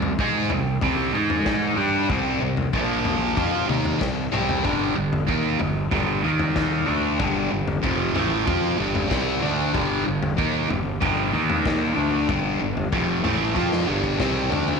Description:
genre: psychedelic rock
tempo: 94 BPM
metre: 4/4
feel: straight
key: unclear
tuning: A4 = 441 Hz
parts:
  - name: fuzz guitar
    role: riff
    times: 0.0-14.8 s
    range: F2 to Ab4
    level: -22 LUFS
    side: right 1 dB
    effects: distortion, phaser
  - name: fuzz fingered electric bass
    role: bass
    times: 0.0-14.8 s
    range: F1 to Ab2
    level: -29 LUFS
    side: right 1 dB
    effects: overdrive
  - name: raw garage drum kit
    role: drums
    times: 0.0-14.8 s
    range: kick drum, snare drum, toms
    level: -27 LUFS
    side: left 4 dB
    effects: none
room: light reverb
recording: 1960s-style stereo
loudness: -20 LUFS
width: side -5 dB against mid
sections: 0.0-14.8 A section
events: drum fill 4.0-4.6, 13.6-14.8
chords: 0.0 Cm; 1.1 Ab5; 1.8 C5; 2.7 Bb5; 3.4 Cm7; 4.6 G5; 6.2 Eb5; 6.9 G5; 11.3 Eb5; 12.0 G5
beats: 0.19 0.83 1.47 | 2.10 2.74 3.38 4.01 | 4.65 5.29 5.92 6.56 | 7.20 7.83 8.47 9.11 | 9.74 10.38 11.02 11.65 | 12.29 12.92 13.56 14.20

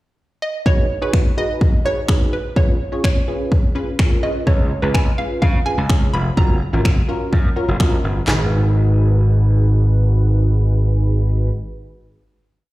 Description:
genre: dance-pop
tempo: 126 BPM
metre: 4/4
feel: straight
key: G# dorian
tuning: A4 = 440 Hz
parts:
  - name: hollow square pluck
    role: melody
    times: 0.4-11.5 s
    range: B4 to B5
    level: -25 LUFS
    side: right 2 dB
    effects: chorus, dub echo
  - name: funky polysynth comp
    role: accompaniment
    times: 0.7-11.5 s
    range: C#4 to C#5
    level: -25 LUFS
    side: equal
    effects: chorus, sidechain pumping
  - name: house drum kit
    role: drums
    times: 0.7-8.4 s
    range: finger snaps, handclaps, kick drum, snare drum, toms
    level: -16 LUFS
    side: equal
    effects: overdrive
  - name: gritty slap bass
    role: bass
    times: 4.5-11.5 s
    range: E#1 to C#3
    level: -16 LUFS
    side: equal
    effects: overdrive, sidechain pumping
room: digital ambience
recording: played on a big sound system in a bare room, stone room reverb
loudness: -15 LUFS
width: side -18 dB against mid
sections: 0.0-0.7 pickup bar; 0.7-8.3 verse; 8.3-12.1 final chord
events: none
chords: 0.0 N.C.; 0.7 G#m7; 2.6 C#7; 6.4 F#maj7; 8.3 G#m7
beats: 0.18 | 0.66 1.14 1.61 2.09 | 2.56 3.04 3.52 3.99 | 4.47 4.95 5.42 5.90 | 6.37 6.85 7.33 7.80 | 8.28 8.75 9.23 9.71 | 10.18 10.66 11.13

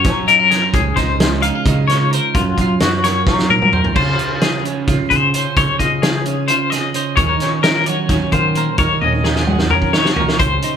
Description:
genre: math rock and midwest emo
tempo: 261 BPM (eighths)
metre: 7/8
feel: straight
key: unclear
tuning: A4 = 441 Hz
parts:
  - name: twelve-string electric guitar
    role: accompaniment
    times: 0.0-10.8 s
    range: Gb2 to C5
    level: -20 LUFS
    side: right 7 dB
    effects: none
  - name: twangy electric guitar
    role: arpeggios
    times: 0.0-10.8 s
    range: F4 to F5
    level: -17 LUFS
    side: left 6 dB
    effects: tremolo
  - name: growling fingered electric bass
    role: bass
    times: 0.0-10.6 s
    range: Db2 to Gb3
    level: -20 LUFS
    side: equal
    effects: overdrive
  - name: loose indie drum kit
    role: drums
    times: 0.0-10.7 s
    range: crash cymbal, hi-hat, kick drum, snare drum, toms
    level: -18 LUFS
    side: equal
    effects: none
room: light reverb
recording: band playing live in one room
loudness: -13 LUFS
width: side -8 dB against mid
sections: 0.0-4.0 A section; 4.0-10.8 B section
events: drum fill 3.3-4.0, 9.0-10.4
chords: 0.0 Gbmaj7; 0.7 Dbmaj9; 2.3 Gbmaj7#11; 4.0 Dbmaj9; 7.2 Ebm9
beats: 0.05 0.28 0.51 | 0.74 0.97 1.20 1.43 1.66 1.89 2.12 | 2.35 2.58 2.81 3.04 3.27 3.50 3.73 | 3.96 4.19 4.42 4.64 4.88 5.11 5.34 | 5.57 5.80 6.03 6.26 6.49 6.72 6.95 | 7.18 7.41 7.64 7.87 8.10 8.33 8.56 | 8.79 9.02 9.25 9.48 9.71 9.94 10.17 | 10.40 10.63

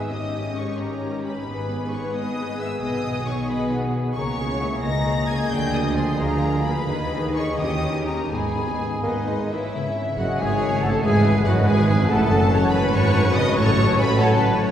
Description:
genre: classical, dramatic, fast romantic movement for symphony orchestra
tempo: 82-97 BPM (dotted quarters)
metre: 6/8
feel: rubato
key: G# minor, C# minor from 9.8 s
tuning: A4 = 440 Hz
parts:
  - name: clear symphonic violin section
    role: second line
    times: 0.0-14.4 s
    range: D#4 to A#5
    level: -31 LUFS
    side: left 1 dB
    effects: none
  - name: flute section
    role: second line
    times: 0.0-14.4 s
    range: B4 to B5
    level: -32 LUFS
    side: left 1 dB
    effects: none
  - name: rich symphonic viola section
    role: accompaniment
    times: 0.0-14.7 s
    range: A#3 to C#5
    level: -30 LUFS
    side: equal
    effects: none
  - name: warm French horn section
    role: sustained chords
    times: 0.0-14.7 s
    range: D#3 to D#4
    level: -27 LUFS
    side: left 2 dB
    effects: none
  - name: concert harp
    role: arpeggios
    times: 0.0-14.7 s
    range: E2 to C#6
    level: -29 LUFS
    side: left 2 dB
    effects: none
  - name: mellow trumpet section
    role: stabs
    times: 0.0-14.7 s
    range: F#4 to A4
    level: -30 LUFS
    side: right 1 dB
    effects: none
  - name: clear symphonic double bass section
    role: bass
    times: 0.0-14.7 s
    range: F#1 to D#2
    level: -27 LUFS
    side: right 2 dB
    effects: none
  - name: rich symphonic cello section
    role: bass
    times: 0.0-14.7 s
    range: F#2 to D#3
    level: -27 LUFS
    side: right 2 dB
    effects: none
  - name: rich symphonic violin section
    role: melody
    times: 0.1-14.4 s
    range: D#5 to A#6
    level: -30 LUFS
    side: left 2 dB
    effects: none
  - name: mellow bassoon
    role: accompaniment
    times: 9.0-9.7 s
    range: E3 to A#3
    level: -33 LUFS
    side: right 1 dB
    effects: none
  - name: mellow tuba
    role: bass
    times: 10.2-14.7 s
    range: F#1 to A1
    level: -28 LUFS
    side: right 1 dB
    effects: none
room: wet church reverb, RT60 3.5 s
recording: heard from further back in the room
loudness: -19 LUFS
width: side -10 dB against mid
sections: 0.0-9.8 A section; 9.8-14.7 B section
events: none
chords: 0.1 D#7/G#; 1.5 G#m; 2.8 G#m/B; 4.2 A#m7b5/C#; 5.5 A#7/D; 6.9 G#m/D#; 7.6 D#7b9; 8.3 G#m; 9.8 C#m; 12.3 F#m; 13.6 F#m/A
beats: | 0.12 0.80 | 1.48 2.15 | 2.83 3.50 | 4.17 4.85 | 5.53 6.21 | 6.89 7.60 | 8.32 9.04 | 9.75 10.40 | 11.04 11.67 | 12.31 12.94 | 13.56 14.20

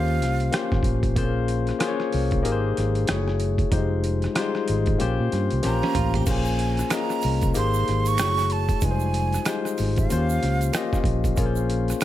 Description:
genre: R&B, neo-soul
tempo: 94 BPM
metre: 4/4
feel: swing 60% on 16ths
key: Bb dorian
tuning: A4 = 441 Hz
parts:
  - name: breathy jazz flute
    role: melody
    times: 0.0-0.8, 5.7-11.0 s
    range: F5 to Db6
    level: -28 LUFS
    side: right 5 dB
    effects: tape echo
  - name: barky tine electric piano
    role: accompaniment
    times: 0.0-12.0 s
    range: G3 to Eb5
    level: -26 LUFS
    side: left 6 dB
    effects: none
  - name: fingered electric bass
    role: bass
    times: 0.0-11.9 s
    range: F1 to Bb2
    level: -24 LUFS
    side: right 1 dB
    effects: none
  - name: boom bap sampler-style drum kit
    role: drums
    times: 0.2-12.0 s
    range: crash cymbal, hi-hat, kick drum, rim click, snare drum, toms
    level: -27 LUFS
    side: right 1 dB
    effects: overdrive
  - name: hollow-body jazz guitar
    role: second line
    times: 5.8-6.4 s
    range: Db4 to G4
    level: -32 LUFS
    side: right 8 dB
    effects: none
  - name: egg shaker and finger snaps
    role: percussion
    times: 6.3-12.0 s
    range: none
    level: -36 LUFS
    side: right 12 dB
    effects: none
room: light reverb, digital ambience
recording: none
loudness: -21 LUFS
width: side -13 dB against mid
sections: 0.0-6.3 A section; 6.3-12.0 A section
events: drum fill 5.6-6.3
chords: 0.0 Eb13; 1.2 Bbm9; 2.4 Abmaj9; 3.1 Gbm9; 3.7 Fm9; 5.0 Bbm69; 6.3 Bbm9; 7.5 Abmaj9; 8.2 Gbm9; 8.8 Fm9; 10.1 Eb13; 11.4 Bbm9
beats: 0.52 | 1.16 1.80 2.44 3.08 | 3.71 4.35 4.99 5.63 | 6.27 6.91 7.54 8.18 | 8.82 9.46 10.10 10.73 | 11.37 12.01

